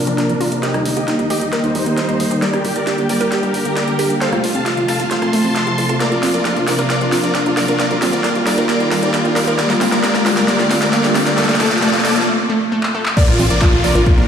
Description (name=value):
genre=uplifting trance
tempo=134 BPM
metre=4/4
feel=straight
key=Bb major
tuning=A4 = 440 Hz
part: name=supersaw chords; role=melody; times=0.0-14.3 s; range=D4 to C6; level=-19 LUFS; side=equal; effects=sidechain pumping, low-pass filter, tape echo
part: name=plucky analog bass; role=bass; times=0.0-14.3 s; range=F1 to F2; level=-24 LUFS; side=equal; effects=sidechain pumping, high-pass filter
part: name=riser and downlifter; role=sound effects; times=1.6-14.3 s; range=none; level=-24 LUFS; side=left 1 dB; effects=none
part: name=analog pluck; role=arpeggios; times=0.1-14.2 s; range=G3 to C5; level=-23 LUFS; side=right 2 dB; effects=chorus, sidechain pumping, tape echo
part: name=big-room dance drum kit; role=drums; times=0.1-14.3 s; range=crash cymbal, handclaps, hi-hat, rim click, snare drum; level=-22 LUFS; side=equal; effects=overdrive, high-pass filter on snare, high-pass filter on hats, high-pass filter on cymbals
part: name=plucky unison lead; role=second line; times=13.2-14.3 s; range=F4 to D5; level=-20 LUFS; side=right 1 dB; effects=sidechain pumping
part: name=electronic kick drum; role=drums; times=13.2-14.2 s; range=none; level=-13 LUFS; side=equal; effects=none
room=wet lush hall reverb, RT60 2.0 s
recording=played on a big sound system in a bare room, stone room reverb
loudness=-14 LUFS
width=side -8 dB against mid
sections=0.0-13.2 A section; 13.2-14.3 B section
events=build-up 0.0-13.2; drum fill 0.0-12.3, 12.8-13.2; filter sweep on supersaw synth 0.0-13.2; filter sweep on synth arpeggio sound 0.0-13.2; riser 1.6-12.3; break 12.3-13.2; drop 13.2-14.3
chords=0.0 Bbadd9; 0.6 Eb; 2.4 Gm; 4.2 F; 6.0 Bbadd9; 7.8 Eb; 9.6 Gm; 11.4 F; 13.2 Bbadd9